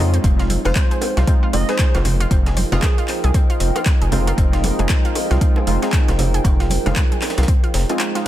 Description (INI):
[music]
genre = deep house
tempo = 116 BPM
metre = 4/4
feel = swing 60% on 16ths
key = unclear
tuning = A4 = 439 Hz
[part]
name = analog pluck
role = arpeggios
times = 0.0-8.2 s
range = C4 to Ab4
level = -29 LUFS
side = left 1 dB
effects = chorus, sidechain pumping, tape echo
[part]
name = warm analog keys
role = stabs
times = 0.0-8.3 s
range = Ab3 to Ab4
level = -25 LUFS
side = right 1 dB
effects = chorus, sidechain pumping, tape echo
[part]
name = rubbery square bass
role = bass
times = 0.0-7.8 s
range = F1 to F2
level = -18 LUFS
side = equal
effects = tube saturation, sidechain pumping
[part]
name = deep dark ambient pad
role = texture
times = 0.0-8.3 s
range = Eb4 to G5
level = -29 LUFS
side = right 2 dB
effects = chorus, built-in reverb, sidechain pumping
[part]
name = deep house drum kit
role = drums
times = 0.1-8.2 s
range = handclaps, hi-hat, rim click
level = -26 LUFS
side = equal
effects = overdrive, small room ambience
[part]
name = warbly tape-like pad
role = sustained chords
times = 0.2-8.3 s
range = Eb4 to G5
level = -31 LUFS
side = right 2 dB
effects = chorus, built-in reverb, sidechain pumping
[part]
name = breakbeat sampler-style drum kit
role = drums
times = 0.2-8.3 s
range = hi-hat, snare drum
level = -33 LUFS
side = equal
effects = none
[part]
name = electronic kick drum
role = drums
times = 0.2-7.6 s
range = none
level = -16 LUFS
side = equal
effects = overdrive, small room ambience
[part]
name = congas and bongos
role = percussion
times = 0.5-8.0 s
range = none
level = -28 LUFS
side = right 2 dB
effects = none
[part]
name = glassy wavetable pluck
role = melody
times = 0.7-3.1 s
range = Ab4 to Eb5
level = -27 LUFS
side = right 1 dB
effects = chorus, tape echo
[sound]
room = little or no reverb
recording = dense, heavily limited modern master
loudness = -15 LUFS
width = side -13 dB against mid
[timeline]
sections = 0.0-8.3 A section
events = none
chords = 0.0 Fm7